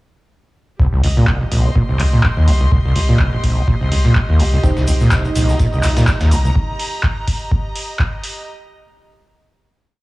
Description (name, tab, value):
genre	acid house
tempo	125 BPM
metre	4/4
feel	swing 55% on 16ths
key	C minor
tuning	A4 = 442 Hz
part	overdriven acid bass	riff	0.8-6.5 s	Bb1 to Bb2	-15 LUFS	equal	tube saturation, wide subtle chorus, cassette tape, analog delay
part	electronic kick drum	drums	0.8-8.1 s	none	-18 LUFS	equal	none
part	bright chamber string section	texture	0.8-8.5 s	G4 to C6	-27 LUFS	equal	sidechain pumping
part	warm sub bass	bass	0.9-6.5 s	C2	-16 LUFS	equal	sidechain pumping
part	booming analog drum machine	drums	1.0-8.3 s	handclaps, hi-hat	-24 LUFS	equal	none
part	dark analog pad	sustained chords	5.0-6.6 s	Eb4 to Eb5	-26 LUFS	right 2 dB	chorus, sidechain pumping
part	band-passed chord stab	stabs	4.6-5.9 s	C4 to G4	-27 LUFS	right 2 dB	phaser, cassette tape, analog delay
part	dusty soul sampler-style drum kit	drums	4.6-6.4 s	hi-hat, snare drum	-30 LUFS	equal	overdrive, sidechain pumping on hats, high-pass filter on hats, high-pass filter on snare, high-pass filter on room
part	tube shaker	percussion	4.6-6.5 s	none	-34 LUFS	left 2 dB	none
room	digital ambience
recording	dry, gritty hardware recording, cassette tape, small room ambience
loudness	-13 LUFS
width	side -20 dB against mid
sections	0.8-8.5 groove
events	none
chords	0.8 Cm